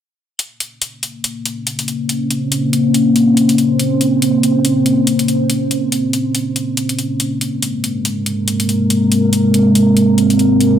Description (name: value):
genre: deep dubstep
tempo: 141 BPM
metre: 4/4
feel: swing 57% on 16ths, half-time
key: Bb minor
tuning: A4 = 439 Hz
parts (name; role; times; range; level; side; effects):
- deep dark ambient pad; sustained chords; 1.4-10.8 s; Ab3 to C5; -13 LUFS; equal; chorus, built-in reverb
- electronic hi-hat; drums; 0.4-10.7 s; none; -19 LUFS; left 2 dB; studio ambience
room: moderate spring reverb, RT60 1.3 s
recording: dense, heavily limited modern master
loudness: -13 LUFS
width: side -9 dB against mid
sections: 0.4-10.8 A section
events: filter sweep on ambient pad 0.4-10.8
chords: 0.4 Bbmadd9; 7.2 Abadd9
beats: | 0.39 0.82 1.24 1.67 | 2.09 2.52 2.94 3.37 | 3.80 4.22 4.65 5.07 | 5.50 5.92 6.35 6.77 | 7.20 7.62 8.05 8.48 | 8.90 9.33 9.75 10.18 | 10.60